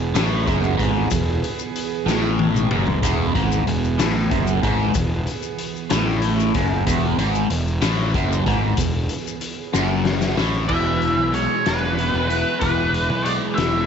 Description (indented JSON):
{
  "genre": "psychedelic rock",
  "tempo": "62 BPM (dotted quarters)",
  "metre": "6/8",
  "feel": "straight",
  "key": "E major",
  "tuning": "A4 = 443 Hz",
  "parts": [
    { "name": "rich chamber string section", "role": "sustained chords", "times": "0.0-10.6 s", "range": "E3 to G#4", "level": "-29 LUFS", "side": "right 13 dB", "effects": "none" },
    { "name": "biting overdriven guitar", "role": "riff", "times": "0.0-13.9 s", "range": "E2 to E4", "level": "-22 LUFS", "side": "equal", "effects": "phaser" },
    { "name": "fuzz fingered electric bass", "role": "bass", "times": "0.0-13.9 s", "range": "E1 to B1", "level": "-23 LUFS", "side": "equal", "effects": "overdrive" },
    { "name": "raw garage drum kit", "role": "drums", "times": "0.2-13.7 s", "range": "crash cymbal, hi-hat, kick drum, snare drum, toms", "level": "-25 LUFS", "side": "left 4 dB", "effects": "none" },
    { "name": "maracas", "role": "percussion", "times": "0.2-10.6 s", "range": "none", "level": "-34 LUFS", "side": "left 14 dB", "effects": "none" },
    { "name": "octave-fuzz lead guitar", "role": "melody", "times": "10.7-13.9 s", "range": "B4 to E5", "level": "-22 LUFS", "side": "right 1 dB", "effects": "distortion, tape echo" }
  ],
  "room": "light reverb, small room ambience",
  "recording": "1960s-style stereo with parts hard left and right, nothing above 7.9 kHz",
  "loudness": "-18 LUFS",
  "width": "side -7 dB against mid",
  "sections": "0.0-10.7 A section; 10.7-13.9 B section",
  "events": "drum fill 2.1-3.0, 9.7-10.7",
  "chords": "0.0 E"
}